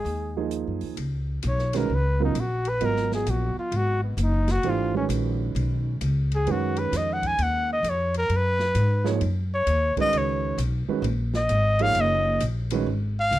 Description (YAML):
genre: modal jazz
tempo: 131 BPM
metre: 4/4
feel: swing 65% on 8ths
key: Db mixolydian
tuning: A4 = 440 Hz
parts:
  - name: breathy trumpet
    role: melody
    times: 0.0-13.4 s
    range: Cb4 to Ab5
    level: -25 LUFS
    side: left 1 dB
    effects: none
  - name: brilliant trombone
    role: second line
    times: 0.0-0.5 s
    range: Ab3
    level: -39 LUFS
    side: left 12 dB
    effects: none
  - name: upright bass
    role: bass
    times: 0.0-13.4 s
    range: Gb1 to Ab2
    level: -25 LUFS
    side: equal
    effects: none
  - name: open jazz drum kit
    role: drums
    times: 0.1-13.4 s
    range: hi-hat, kick drum, ride cymbal, snare drum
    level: -39 LUFS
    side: left 1 dB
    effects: none
  - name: dark grand piano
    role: accompaniment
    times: 0.4-12.9 s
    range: Db3 to Eb5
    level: -28 LUFS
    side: right 8 dB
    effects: none
room: small room ambience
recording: dry, close 1970s-style studio recording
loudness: -22 LUFS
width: side -14 dB against mid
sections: 1.0-13.4 A section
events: trumpet solo 1.0-13.4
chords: 0.0 Ab7(no3); 1.0 Db9sus4